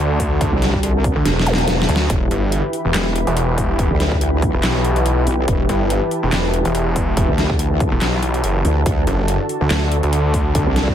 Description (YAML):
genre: heavy wobble dubstep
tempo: 142 BPM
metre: 4/4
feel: swing 55% on 16ths, half-time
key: E minor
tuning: A4 = 440 Hz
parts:
  - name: supersaw pad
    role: sustained chords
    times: 0.0-10.9 s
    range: D3 to B5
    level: -22 LUFS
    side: equal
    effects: sidechain pumping, low-pass filter
  - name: snarling distorted saw bass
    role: bass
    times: 0.0-10.6 s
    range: E1 to D2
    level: -18 LUFS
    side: equal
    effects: distortion, overdrive
  - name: dubstep drum kit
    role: drums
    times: 0.2-10.9 s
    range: handclaps, hi-hat, snare drum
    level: -22 LUFS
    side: left 1 dB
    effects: overdrive
  - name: electronic kick drum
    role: drums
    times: 0.2-10.9 s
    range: none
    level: -20 LUFS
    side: equal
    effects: none
  - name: wobble bass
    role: bass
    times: 0.5-10.9 s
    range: E1 to D2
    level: -18 LUFS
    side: equal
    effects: chorus, overdrive
  - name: zap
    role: sound effects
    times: 1.5-1.6 s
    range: none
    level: -23 LUFS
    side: equal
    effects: none
room: little or no reverb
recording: none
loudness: -15 LUFS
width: side -10 dB against mid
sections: 0.0-10.9 A section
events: drum fill 1.3-2.1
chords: 0.0 D; 2.1 Em; 8.9 D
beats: | 0.41 0.83 1.25 1.68 | 2.10 2.52 2.94 3.37 | 3.79 4.21 4.63 5.06 | 5.48 5.90 6.33 6.75 | 7.17 7.59 8.02 8.44 | 8.86 9.28 9.71 10.13 | 10.55